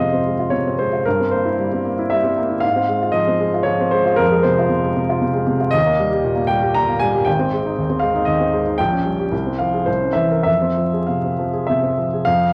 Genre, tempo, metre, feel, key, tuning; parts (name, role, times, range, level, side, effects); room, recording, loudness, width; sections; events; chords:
classical, romantic character piece for solo piano; 96-121 BPM; 3/4; rubato; F minor; A4 = 440 Hz
warm baby grand piano; solo; 0.0-12.5 s; Ab1 to Bb5; -18 LUFS; equal
moderate recital hall reverb, RT60 1.4 s; worn, warbling old tape, cassette tape, vinyl crackle, warbly pitch drift; -18 LUFS; mono
0.0-12.3 A section
0.0 Fm; 1.1 C7/G; 2.6 Fm/Ab; 4.2 Fm; 5.7 Eb; 7.3 Ab; 8.8 Gdim/Bb; 9.3 Fm/C; 9.9 C7b9; 10.5 Fm